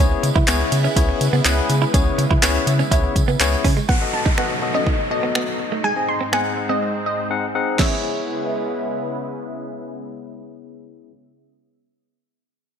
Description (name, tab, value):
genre	dance-pop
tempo	123 BPM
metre	4/4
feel	straight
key	C# minor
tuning	A4 = 438 Hz
part	barky tine electric piano	accompaniment	0.0-11.1 s	B3 to F#5	-26 LUFS	left 7 dB	sidechain pumping, low-pass filter
part	lush unison pad	sustained chords	0.0-11.1 s	G#2 to E4	-27 LUFS	right 1 dB	chorus, phaser, sidechain pumping, low-pass filter
part	direct-recorded clean electric guitar	riff	0.0-7.9 s	G#3 to E4	-26 LUFS	right 8 dB	lush chorus, low-pass filter
part	warm sub bass	bass	0.0-3.8 s	C#2 to C#3	-20 LUFS	equal	sidechain pumping
part	deep house drum kit	drums	0.2-7.9 s	crash cymbal, finger snaps, handclaps, hi-hat, kick drum, snare drum	-20 LUFS	equal	none
part	tambourine	percussion	0.2-3.9 s	none	-31 LUFS	right 12 dB	none
part	glassy wavetable pluck	melody	3.9-9.2 s	D#5 to B#5	-25 LUFS	left 1 dB	chorus, sidechain pumping, low-pass filter, ping-pong delay
part	downlifter	sound effects	3.9-7.8 s	none	-29 LUFS	equal	none
room	light reverb, digital ambience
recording	bright 1980s-style digital production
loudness	-17 LUFS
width	side -8 dB against mid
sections	0.0-3.9 A section; 3.9-7.8 B section; 7.8-11.7 C section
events	filter sweep 3.9-7.8; silent gap 6.8-7.8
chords	0.0 C#m7; 3.9 B7; 5.8 G#; 7.8 C#m7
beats	0.48 0.96 1.45 | 1.94 2.43 2.92 3.40 | 3.89 4.38 4.87 5.35 | 5.84 6.33 6.82 7.30 | 7.79 8.28 8.77 9.26 | 9.74 10.23 10.72